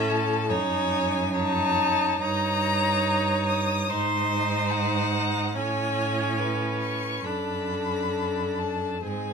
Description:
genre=classical, slow romantic movement for string quartet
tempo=63-74 BPM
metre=4/4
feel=rubato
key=unclear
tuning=A4 = 440 Hz
part: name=rich violin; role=melody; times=0.0-9.3 s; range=E5 to D#6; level=-29 LUFS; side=left 6 dB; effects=none
part: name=rich violin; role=second line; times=0.0-9.3 s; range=G#4 to C#5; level=-30 LUFS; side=left 1 dB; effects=none
part: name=clear viola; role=accompaniment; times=0.0-9.3 s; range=B#3 to D#4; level=-28 LUFS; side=right 2 dB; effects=none
part: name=rich cello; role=bass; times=0.0-9.3 s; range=F#2 to A2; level=-29 LUFS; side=right 3 dB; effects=none
room=light reverb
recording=close, detailed microphones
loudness=-23 LUFS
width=side -6 dB against mid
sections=0.0-9.3 A section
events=none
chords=0.0 A; 0.5 D#m7b5/F#; 2.2 D#7/G; 3.9 G#; 5.6 Amaj7; 7.2 D/F#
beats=0.50 1.34 | 2.21 3.06 3.89 4.72 | 5.56 6.39 7.25 8.13 | 9.05

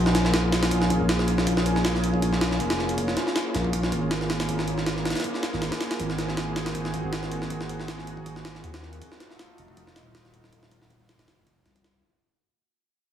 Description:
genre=drum and bass, jungle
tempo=159 BPM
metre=4/4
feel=swing 54% on 16ths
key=Bb minor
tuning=A4 = 444 Hz
part: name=lush unison pad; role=sustained chords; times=0.0-12.0 s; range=A3 to Ab4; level=-30 LUFS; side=equal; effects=chorus, vintage 12-bit sampler grit
part: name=saturated sub bass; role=bass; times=0.0-12.0 s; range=Eb1 to Eb2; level=-27 LUFS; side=equal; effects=tube saturation
part: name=jungle sampler-style drum kit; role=drums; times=0.1-11.9 s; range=hi-hat, kick drum, snare drum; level=-27 LUFS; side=equal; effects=high-pass filter on kick, high-pass filter on hats, high-pass filter on snare, high-pass filter on room
room=moderate digital room reverb, RT60 1.2 s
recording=heavily compressed radio sound, multiband compression, studio ambience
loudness=-23 LUFS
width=side -9 dB against mid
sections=0.0-12.0 A section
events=fade-out 0.0-12.0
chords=0.0 Bbm7; 6.0 Ab9; 9.0 F7b9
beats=0.33 0.71 1.09 | 1.47 1.84 2.22 2.60 | 2.98 3.35 3.73 4.11 | 4.49 4.86 5.24 5.62 | 6.00 6.37 6.75 7.13 | 7.50 7.88 8.26 8.64 | 9.01 9.39 9.77 10.15 | 10.52 10.90 11.28 11.65

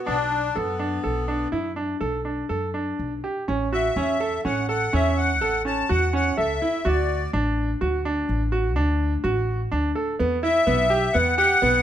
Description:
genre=contemporary instrumental, chamber music in an uneven meter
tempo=125 BPM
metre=7/4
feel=straight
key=unclear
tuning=A4 = 440 Hz
part: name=accordion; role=melody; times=0.0-11.8 s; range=B3 to A5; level=-23 LUFS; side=left 2 dB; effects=light tremolo tuning
part: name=bright grand piano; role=arpeggios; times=0.1-11.8 s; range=B3 to A4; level=-25 LUFS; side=right 2 dB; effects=none
part: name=upright bass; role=bass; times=0.1-11.8 s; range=A1 to F#2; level=-27 LUFS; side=equal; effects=none
room=light reverb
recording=close, detailed microphones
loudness=-21 LUFS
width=side -10 dB against mid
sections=0.0-3.5 A section; 3.5-11.8 B section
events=none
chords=0.1 Bm7; 3.5 A6; 6.9 D; 10.2 Emadd9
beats=| 0.07 0.56 1.04 1.52 2.01 2.50 2.99 | 3.48 3.97 4.45 4.93 5.42 5.90 6.38 | 6.86 7.34 7.81 8.29 8.77 9.24 9.72 | 10.19 10.66 11.14 11.61

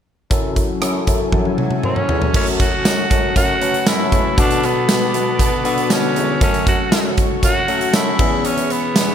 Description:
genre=1980s-style pop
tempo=118 BPM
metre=4/4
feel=straight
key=F# minor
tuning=A4 = 440 Hz
part: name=bell-like tine electric piano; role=accompaniment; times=0.3-9.1 s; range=B2 to B4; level=-22 LUFS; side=left 5 dB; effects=lush chorus
part: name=sweeping resonant pad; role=sustained chords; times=0.3-9.1 s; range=F#3 to D6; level=-26 LUFS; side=equal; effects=chorus
part: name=mellow bassoon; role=bass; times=0.3-9.1 s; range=E2 to B3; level=-25 LUFS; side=equal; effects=none
part: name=big rock drum kit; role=drums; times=0.3-9.1 s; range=crash cymbal, hi-hat, kick drum, rim click, snare drum, tambourine, toms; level=-18 LUFS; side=right 1 dB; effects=gated reverb
part: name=breathy tenor saxophone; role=melody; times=1.8-9.1 s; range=B3 to F#4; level=-20 LUFS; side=equal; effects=none
part: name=crunchy overdriven guitar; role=accompaniment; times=2.3-9.1 s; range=E2 to B3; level=-30 LUFS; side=right 2 dB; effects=lush chorus
room=moderate lush hall reverb, RT60 1.8 s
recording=bright 1980s-style digital production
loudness=-14 LUFS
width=side -8 dB against mid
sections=0.3-2.3 A section; 2.3-9.1 B section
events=drum fill 1.3-2.3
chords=0.3 F#m7; 2.3 F#m; 4.4 Bm7; 6.4 F#m; 8.2 E6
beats=| 0.31 0.82 1.33 1.84 | 2.35 2.85 3.36 3.87 | 4.38 4.89 5.40 5.91 | 6.41 6.92 7.43 7.94 | 8.45 8.96

